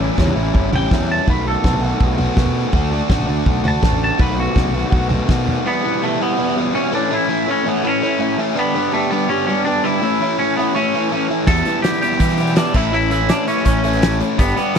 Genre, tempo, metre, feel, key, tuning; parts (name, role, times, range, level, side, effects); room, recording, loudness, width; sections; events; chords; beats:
indie rock; 165 BPM; 4/4; straight; A4 = 440 Hz
overdriven electric guitar; riff; 0.0-14.8 s; E2 to G4; -18 LUFS; equal
fuzz fingered electric bass; bass; 0.0-5.6, 11.5-14.5 s; G1 to E3; -20 LUFS; equal; overdrive
loose indie drum kit; drums; 0.2-5.6, 11.5-14.8 s; crash cymbal, hi-hat, kick drum, snare drum, toms; -18 LUFS; equal
twangy electric guitar; melody; 0.8-14.8 s; A3 to A5; -21 LUFS; equal; lush chorus
soft synth bell; second line; 10.7-14.8 s; A5 to A6; -31 LUFS; right 4 dB
little or no reverb; dry, close 1970s-style studio recording; -15 LUFS; side -7 dB against mid
0.0-5.7 A section; 5.7-14.8 B section
clean electric guitar solo 0.0-5.7; drum fill 5.3-5.7
0.0 A7; 1.3 B7; 2.7 D; 4.2 B7; 5.7 Em; 6.9 A; 8.6 G; 10.0 A; 11.5 Em; 12.8 A
0.18 0.55 0.92 | 1.28 1.65 2.01 2.37 | 2.74 3.10 3.47 3.83 | 4.20 4.56 4.93 5.29 | 5.66 6.02 6.38 6.75 | 7.11 7.48 7.84 8.21 | 8.57 8.93 9.30 9.66 | 10.03 10.39 10.75 11.12 | 11.48 11.85 12.21 12.57 | 12.94 13.30 13.66 14.03 | 14.39 14.76